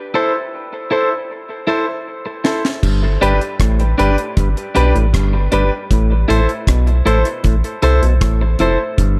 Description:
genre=dub reggae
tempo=78 BPM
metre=4/4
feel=straight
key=A minor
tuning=A4 = 440 Hz
part: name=clean electric guitar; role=accompaniment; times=0.1-8.8 s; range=D4 to C5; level=-23 LUFS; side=equal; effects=low-pass filter, dub echo
part: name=clear baby grand piano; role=stabs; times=0.1-8.8 s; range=D4 to C5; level=-24 LUFS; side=equal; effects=low-pass filter, dub echo
part: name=deep reggae drum kit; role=drums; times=2.4-9.2 s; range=crash cymbal, hi-hat, kick drum, rim click, snare drum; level=-20 LUFS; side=equal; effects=none
part: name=mellow clav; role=riff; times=2.8-9.2 s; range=F2 to C3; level=-25 LUFS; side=equal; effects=dub echo
part: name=soft dub sub bass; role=bass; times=2.8-9.2 s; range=F1 to C2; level=-17 LUFS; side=equal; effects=none
room=light reverb, studio ambience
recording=echo-heavy mix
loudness=-16 LUFS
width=mono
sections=0.0-2.8 A section; 2.8-9.2 B section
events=drum fill 2.1-2.8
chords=0.0 Am; 2.8 G; 5.9 Am

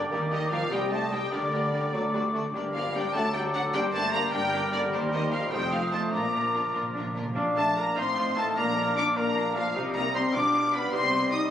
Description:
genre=quick classical-period movement for symphony orchestra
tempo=100 BPM (dotted quarters)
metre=6/8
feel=rubato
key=G minor, Bb major from 4.9 s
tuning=A4 = 440 Hz
part: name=warm oboe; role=second line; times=0.0-11.5 s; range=A4 to F5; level=-36 LUFS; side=right 1 dB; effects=none
part: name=dark French horn section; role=sustained chords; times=0.0-11.5 s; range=D3 to Eb4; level=-32 LUFS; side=left 2 dB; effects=none
part: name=rich studio cello section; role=bass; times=0.0-11.4 s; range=C2 to C3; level=-37 LUFS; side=right 2 dB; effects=none
part: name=warm studio double bass section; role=bass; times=0.0-11.4 s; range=F1 to Eb2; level=-37 LUFS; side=right 2 dB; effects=none
part: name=clear studio violin section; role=second line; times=0.1-11.5 s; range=F4 to Eb6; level=-37 LUFS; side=left 1 dB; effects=none
part: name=silver concert flute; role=second line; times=0.1-11.4 s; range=F5 to Eb6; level=-32 LUFS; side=left 2 dB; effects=none
part: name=warm clarinet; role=second line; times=0.1-11.5 s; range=F4 to Eb5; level=-39 LUFS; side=left 1 dB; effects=none
part: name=mellow bassoon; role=accompaniment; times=0.1-11.5 s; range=F3 to Eb4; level=-32 LUFS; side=equal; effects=none
part: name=rich studio viola section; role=accompaniment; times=0.1-11.4 s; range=G3 to F4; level=-38 LUFS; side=right 1 dB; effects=none
part: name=rich studio violin section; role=melody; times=0.3-11.4 s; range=D5 to Eb6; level=-31 LUFS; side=left 1 dB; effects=none
part: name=timpani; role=percussion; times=6.1-7.4 s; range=Bb2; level=-40 LUFS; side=left 1 dB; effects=none
room=wet scoring stage reverb, RT60 1.8 s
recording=recorded on a phone in the room, club reverb, compression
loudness=-24 LUFS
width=side -10 dB against mid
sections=0.0-7.4 A section; 7.4-11.5 B section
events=timpani fill 6.1-7.4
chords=0.1 Eb; 0.7 Cm; 1.3 Gm/D; 1.9 D; 2.5 Gm; 3.2 D; 3.7 Gm; 4.9 Cm7/Eb; 5.5 F7; 6.1 Bb; 8.0 F7/A; 8.6 Bb; 9.8 Cm; 10.3 G7/B; 10.9 Cm

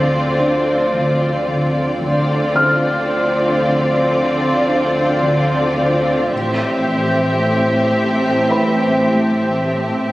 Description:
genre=cinematic, suspense film score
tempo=56 BPM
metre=4/4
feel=straight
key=unclear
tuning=A4 = 440 Hz
part: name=muted studio violin section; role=melody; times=0.0-10.1 s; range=D5 to E5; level=-23 LUFS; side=left 1 dB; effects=none
part: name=muted studio violin section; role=second line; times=0.0-10.1 s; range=F4 to G4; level=-23 LUFS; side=left 1 dB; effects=none
part: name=muted studio viola section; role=accompaniment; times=0.0-10.1 s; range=C4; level=-19 LUFS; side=equal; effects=none
part: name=deep dark ambient pad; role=sustained chords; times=0.0-10.1 s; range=F4 to C6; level=-25 LUFS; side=right 1 dB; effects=chorus, built-in reverb
part: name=smooth synth bass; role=riff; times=0.0-9.9 s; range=A2 to D4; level=-24 LUFS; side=equal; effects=none
part: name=muted studio cello section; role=bass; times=0.0-10.1 s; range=A2 to D3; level=-22 LUFS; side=right 1 dB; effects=none
part: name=muted symphonic double bass section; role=bass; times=0.0-10.1 s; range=A1 to D2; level=-25 LUFS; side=right 1 dB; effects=none
part: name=warm sub bass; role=drone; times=0.0-10.1 s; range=A1 to D2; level=-40 LUFS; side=equal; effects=none
part: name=felt-muted upright piano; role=texture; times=0.0-10.1 s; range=B4 to F6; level=-21 LUFS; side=left 1 dB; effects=none
room=wet recital hall reverb, RT60 1.4 s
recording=recorded on a phone in the room, club reverb, compression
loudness=-14 LUFS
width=side -17 dB against mid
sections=0.0-10.1 A section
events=none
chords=0.0 Dm7; 6.3 Am7

